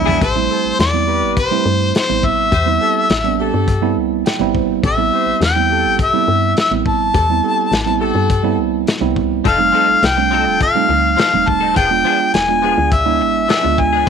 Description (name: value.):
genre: straight-eighth soul blues.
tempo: 104 BPM.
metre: 4/4.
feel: straight.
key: A minor.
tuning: A4 = 435 Hz.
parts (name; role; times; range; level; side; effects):
clear harmonica; melody; 0.0-14.1 s; E4 to A5; -15 LUFS; left 2 dB; overdrive.
mellow tine electric piano; accompaniment; 0.0-14.1 s; F3 to G5; -19 LUFS; right 15 dB; none.
woody FM bass; bass; 0.0-14.0 s; Eb1 to G2; -21 LUFS; left 2 dB; none.
direct-recorded clean electric guitar; stabs; 0.1-0.2, 9.4-14.1 s; F3 to A4; -24 LUFS; left 15 dB; ensemble chorus.
crunchy breakbeat drum kit; drums; 0.1-13.9 s; hi-hat, kick drum, snare drum, toms; -19 LUFS; left 2 dB; none.
warm horn section; sustained chords; 0.2-13.2 s; C4 to C5; -25 LUFS; left 4 dB; none.
room: light reverb, studio reverb.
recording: 1960s-style stereo with parts hard left and right.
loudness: -13 LUFS.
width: side -7 dB against mid.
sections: 0.2-14.1 A section.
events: drum fill 0.0; tine electric piano fill 4.0-4.8.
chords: 0.2 Am7; 9.5 F7; 11.8 E7b9.